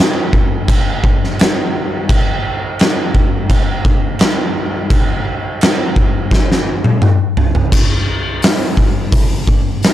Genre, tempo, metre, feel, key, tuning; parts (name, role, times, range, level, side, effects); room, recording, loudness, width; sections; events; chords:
metal; 85 BPM; 4/4; straight
oversized low-tuned drum kit; drums; 0.0-9.9 s; crash cymbal, hi-hat, kick drum, snare drum, toms; -12 LUFS; equal
little or no reverb; dark, warm production; -12 LUFS; side -12 dB against mid
0.0-7.7 A section; 7.7-9.9 B section
drum fill 6.3-7.7